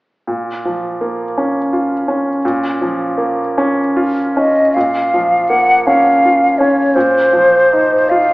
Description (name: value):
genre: classical, romantic duo for flute and grand piano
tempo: 48-57 BPM (dotted quarters)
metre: 6/8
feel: rubato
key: Bb minor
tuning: A4 = 440 Hz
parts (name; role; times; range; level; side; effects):
- bright grand piano; accompaniment; 0.3-8.3 s; Bb2 to F4; -15 LUFS; equal; none
- mellow hollow silver concert flute; melody; 4.4-8.3 s; C5 to Gb5; -11 LUFS; equal; none
room: wet recital hall reverb, RT60 1.5 s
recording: heard from further back in the room, AM radio sound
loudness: -12 LUFS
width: side -21 dB against mid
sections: 0.3-4.8 A section; 4.8-8.3 B section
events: none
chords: 0.3 Bbm; 7.0 F7(no3)/Bb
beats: | 0.28 1.37 | 2.43 3.55 | 4.75 5.87 | 6.95 8.10